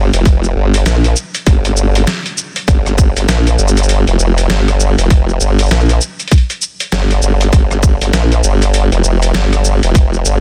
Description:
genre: glitch hop.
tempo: 99 BPM.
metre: 4/4.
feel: swing 60% on 16ths.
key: G minor.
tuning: A4 = 438 Hz.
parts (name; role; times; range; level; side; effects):
formant-sweep wobble bass; bass; 0.0-10.4 s; F1 to Bb1; -14 LUFS; equal; chorus.
boom bap sampler-style drum kit; drums; 0.1-10.4 s; hi-hat, rim click, shaker, snare drum; -20 LUFS; equal; none.
electronic kick drum; drums; 0.3-10.1 s; none; -11 LUFS; equal; overdrive.
room: little or no reverb.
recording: dense, heavily limited modern master.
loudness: -12 LUFS.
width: mono.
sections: 0.0-10.4 A section.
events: none.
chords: none.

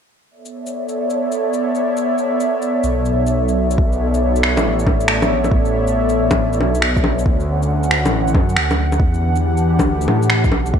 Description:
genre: future garage.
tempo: 138 BPM.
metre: 4/4.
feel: swing 66% on 16ths.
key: B minor.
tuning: A4 = 440 Hz.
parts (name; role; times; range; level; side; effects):
airy breathy pad; sustained chords; 0.3-10.8 s; D3 to F#5; -19 LUFS; equal; chorus, sidechain pumping.
electronic shaker, finger snaps and bongos; drums; 0.5-10.7 s; none; -19 LUFS; left 1 dB; overdrive, gated reverb.
swelling detuned saw bass; bass; 2.8-10.8 s; A1 to A2; -19 LUFS; equal; sidechain pumping.
electronic kick drum; drums; 3.8-10.8 s; none; -18 LUFS; equal; overdrive.
room: moderate lush hall reverb, RT60 1.8 s, digital ambience.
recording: bright 1980s-style digital production, cassette tape.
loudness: -15 LUFS.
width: side -7 dB against mid.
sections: 0.3-3.8 A section; 3.8-10.8 B section.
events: none.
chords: 0.3 Bm11; 7.3 Dmaj7; 9.0 Em9.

